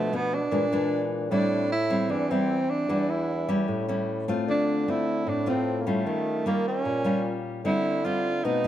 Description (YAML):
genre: bossa nova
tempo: 152 BPM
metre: 4/4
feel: straight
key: D minor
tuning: A4 = 440 Hz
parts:
  - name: breathy tenor saxophone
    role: melody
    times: 0.0-8.7 s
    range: A3 to F4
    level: -28 LUFS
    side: right 3 dB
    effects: none
  - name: nylon-string guitar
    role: accompaniment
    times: 0.0-8.7 s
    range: A2 to F#4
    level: -27 LUFS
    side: left 2 dB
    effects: none
  - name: mellow bassoon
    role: bass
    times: 0.0-8.7 s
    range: E2 to Eb3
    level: -30 LUFS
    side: equal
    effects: none
room: little or no reverb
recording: none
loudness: -24 LUFS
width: side -11 dB against mid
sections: 0.0-8.7 A section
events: none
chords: 0.0 Bm7b5; 0.5 Bb7#11; 1.3 Am7; 2.9 Em9; 3.7 A7; 4.5 Dm7; 6.1 Eb9; 7.6 Dm11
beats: 0.13 0.52 0.92 | 1.31 1.71 2.11 2.50 | 2.90 3.29 3.69 4.08 | 4.48 4.88 5.27 5.67 | 6.06 6.46 6.85 7.25 | 7.64 8.04 8.44